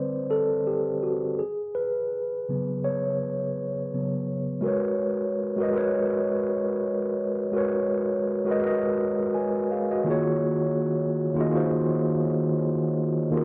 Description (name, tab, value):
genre	hip hop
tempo	83 BPM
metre	4/4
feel	swing 55% on 16ths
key	unclear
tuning	A4 = 440 Hz
part	mellow tine electric piano	solo	0.0-13.4 s	C#3 to G#5	-26 LUFS	equal	cassette tape, low-pass filter
room	wet small room reverb, RT60 0.5 s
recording	worn, warbling old tape, cassette tape, warbly pitch drift, lossy compression artefacts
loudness	-26 LUFS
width	mono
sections	0.0-4.7 A section; 4.7-13.4 B section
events	tine electric piano solo 0.0-4.7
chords	0.0 D7sus4; 1.4 C#7sus4; 4.7 G#m11; 10.1 D#m11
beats	0.31 1.04 | 1.76 2.48 3.21 3.93 | 4.65 5.37 6.10 6.82 | 7.54 8.27 8.99 9.71 | 10.44 11.16 11.88 12.60 | 13.33